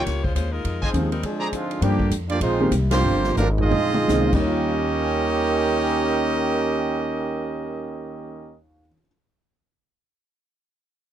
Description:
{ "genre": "jazz, big band swing", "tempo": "144-206 BPM", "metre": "4/4", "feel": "swing 61% on 8ths", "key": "Eb mixolydian", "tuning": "A4 = 441 Hz", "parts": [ { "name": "edgy saxophone section", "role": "melody", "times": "0.0-1.7 s", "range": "F3 to Db5", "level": "-30 LUFS", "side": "left 4 dB", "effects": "none" }, { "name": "bright trumpet section", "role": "stabs", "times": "0.0-1.5 s", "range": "F4 to Bb5", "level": "-26 LUFS", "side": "right 1 dB", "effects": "none" }, { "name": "upright bass", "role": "bass", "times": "0.0-8.9 s", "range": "G1 to G2", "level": "-25 LUFS", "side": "equal", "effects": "none" }, { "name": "swinging big-band drum kit", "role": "drums", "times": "0.1-4.4 s", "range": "crash cymbal, hi-hat, kick drum, ride cymbal, snare drum, toms", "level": "-29 LUFS", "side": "equal", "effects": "none" }, { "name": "clear upright piano", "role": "accompaniment", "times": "0.9-9.1 s", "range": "Eb2 to G4", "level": "-25 LUFS", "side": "left 1 dB", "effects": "none" }, { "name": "dark trombone section", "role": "second line", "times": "1.2-8.6 s", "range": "Ab2 to G4", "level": "-24 LUFS", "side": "right 4 dB", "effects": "none" }, { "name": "bright trumpet section", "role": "melody", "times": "1.5-8.6 s", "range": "G3 to Eb5", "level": "-25 LUFS", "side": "right 1 dB", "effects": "none" } ], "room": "little or no reverb", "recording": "dry, close 1970s-style studio recording", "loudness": "-20 LUFS", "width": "side -10 dB against mid", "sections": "0.0-1.8 A section; 1.8-4.5 B section; 4.5-7.8 C section", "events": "break 1.2-1.8; slowing down 1.8-4.5; band accent 2.9; drum fill 3.4-4.1", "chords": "0.0 Eb9; 0.6 Fm7; 1.2 Bb9; 1.8 Gm7; 2.4 Bb9sus4; 3.0 Gm7; 3.7 Bb9sus4; 4.3 Eb7; 4.5 Eb9", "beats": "0.06 0.35 | 0.64 0.94 1.23 1.52 | 1.81 2.10 2.40 2.71 | 3.03 3.36 3.71 4.08 | 4.48 4.90 5.32 5.73 | 6.15 6.57 6.98 7.40" }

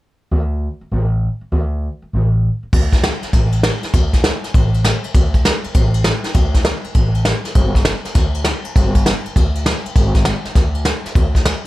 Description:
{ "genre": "rockabilly", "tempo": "199 BPM", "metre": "4/4", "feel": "swing 65% on 8ths", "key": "unclear", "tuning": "A4 = 440 Hz", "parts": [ { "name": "upright bass", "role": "bass", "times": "0.3-11.7 s", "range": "G1 to D2", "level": "-18 LUFS", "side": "equal", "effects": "none" }, { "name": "soft brush drum kit", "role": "drums", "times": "2.7-11.5 s", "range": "crash cymbal, kick drum, ride cymbal, snare drum", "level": "-15 LUFS", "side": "equal", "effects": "none" } ], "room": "little or no reverb", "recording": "none", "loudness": "-14 LUFS", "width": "side -17 dB against mid", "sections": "0.3-2.7 A section; 2.7-11.7 B section", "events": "none", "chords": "none", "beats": "| 0.32 0.62 0.92 1.22 | 1.53 1.83 2.13 2.43 | 2.73 3.04 3.34 3.64 | 3.94 4.24 4.54 4.84 | 5.15 5.45 5.75 6.05 | 6.35 6.65 6.95 7.25 | 7.56 7.86 8.16 8.46 | 8.76 9.06 9.36 9.66 | 9.96 10.26 10.56 10.86 | 11.15 11.45" }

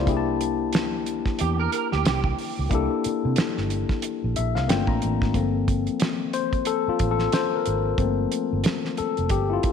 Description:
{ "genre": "R&B, neo-soul", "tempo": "91 BPM", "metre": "4/4", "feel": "swing 58% on 16ths", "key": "G dorian", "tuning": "A4 = 440 Hz", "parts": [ { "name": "tine electric piano", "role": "accompaniment", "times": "0.0-9.7 s", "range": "F3 to Bb5", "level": "-25 LUFS", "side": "left 7 dB", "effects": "medium stereo tremolo" }, { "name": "vintage muted fingered electric bass", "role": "bass", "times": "0.0-9.6 s", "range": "F1 to C3", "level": "-26 LUFS", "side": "right 2 dB", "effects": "transformer saturation" }, { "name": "damped 70s drum kit", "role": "drums", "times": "0.1-9.7 s", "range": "hi-hat, kick drum, snare drum", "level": "-26 LUFS", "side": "right 2 dB", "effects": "none" }, { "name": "electric guitar at the edge of break-up", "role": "second line", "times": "1.4-2.9 s", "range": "G4 to Bb4", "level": "-28 LUFS", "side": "right 12 dB", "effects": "ensemble chorus" } ], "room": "moderate echo chamber reverb, RT60 1.9 s, small room reverb", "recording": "1960s-style stereo with parts hard left and right", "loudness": "-22 LUFS", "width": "side -7 dB against mid", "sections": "0.0-5.3 A section; 5.3-9.7 B section", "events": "tine electric piano fill 4.0-5.3; tine electric piano solo 5.3-9.7", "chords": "0.1 C9; 4.7 Gm9; 5.3 Gm11", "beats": "| 0.07 0.73 1.39 2.05 | 2.71 3.37 4.03 4.69 | 5.35 6.01 6.67 7.33 | 7.99 8.64 9.30" }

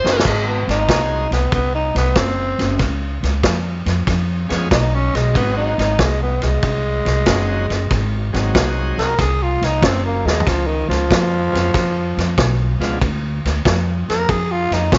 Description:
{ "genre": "electric blues shuffle", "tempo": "94 BPM", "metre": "4/4", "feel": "swing 68% on 8ths", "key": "Ab mixolydian", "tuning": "A4 = 440 Hz", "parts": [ { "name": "bright tonewheel organ", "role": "accompaniment", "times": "0.0-13.0 s", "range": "F3 to Bb4", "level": "-28 LUFS", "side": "equal", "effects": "slow rotary speaker, overdrive" }, { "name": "upright bass", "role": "bass", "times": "0.0-15.0 s", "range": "Gb1 to F2", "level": "-22 LUFS", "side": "equal", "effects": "none" }, { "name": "vintage drum kit", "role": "drums", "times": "0.1-15.0 s", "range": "crash cymbal, kick drum, ride cymbal, snare drum, toms", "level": "-22 LUFS", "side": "equal", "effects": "none" }, { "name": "growling tenor saxophone", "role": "second line", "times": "0.3-15.0 s", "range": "Eb3 to Bb4", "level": "-23 LUFS", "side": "equal", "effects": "none" } ], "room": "light reverb, small room ambience", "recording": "nothing above 7.8 kHz", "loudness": "-18 LUFS", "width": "mono", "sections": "0.2-15.0 A section", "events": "drum fill 0.0, 10.1-10.5; tenor saxophone solo 0.2-15.0", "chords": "0.2 Ab7; 2.8 Db7; 5.4 Ab7; 10.5 Db7; 13.0 G7(no3) (rootless)", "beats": "| 0.24 0.88 1.52 2.16 | 2.80 3.44 4.08 4.71 | 5.35 5.99 6.63 7.27 | 7.91 8.55 9.19 9.82 | 10.46 11.10 11.74 12.37 | 13.01 13.65 14.28 14.92" }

